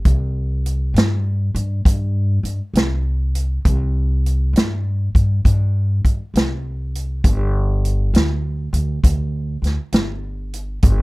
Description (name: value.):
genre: slow blues.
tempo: 67 BPM (dotted quarters).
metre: 12/8.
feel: straight.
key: unclear.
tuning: A4 = 443 Hz.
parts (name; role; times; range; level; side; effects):
upright bass; bass; 0.1-11.0 s; G1 to G2; -19 LUFS; equal; none.
vintage drum kit; drums; 0.1-11.0 s; hi-hat, kick drum, snare drum; -16 LUFS; equal; none.
room: little or no reverb.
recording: dark, warm production.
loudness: -17 LUFS.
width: side -22 dB against mid.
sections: 0.0-11.0 A section.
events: none.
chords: none.